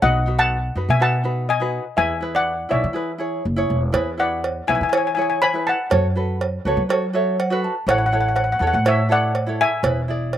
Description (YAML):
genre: calypso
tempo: 122 BPM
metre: 4/4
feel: straight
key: unclear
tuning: A4 = 442 Hz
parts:
  - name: steel pan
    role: melody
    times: 0.0-10.4 s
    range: C#5 to B5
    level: -20 LUFS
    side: left 2 dB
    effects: slapback echo
  - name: tenor ukulele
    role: accompaniment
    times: 0.0-10.4 s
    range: D#4 to A5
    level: -25 LUFS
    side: right 1 dB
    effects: slapback echo
  - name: upright bass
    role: bass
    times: 0.0-10.4 s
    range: E1 to F#3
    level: -23 LUFS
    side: equal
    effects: none
  - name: cowbell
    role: percussion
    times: 3.9-10.4 s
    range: none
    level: -23 LUFS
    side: right 4 dB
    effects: slapback echo
room: little or no reverb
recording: recorded outdoors, with no room sound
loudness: -18 LUFS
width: side -11 dB against mid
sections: 0.0-10.4 A section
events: ukulele fill 6.4-7.9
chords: 0.0 B7; 2.0 E; 3.9 Eadd9; 5.9 F#m; 7.9 A; 9.8 E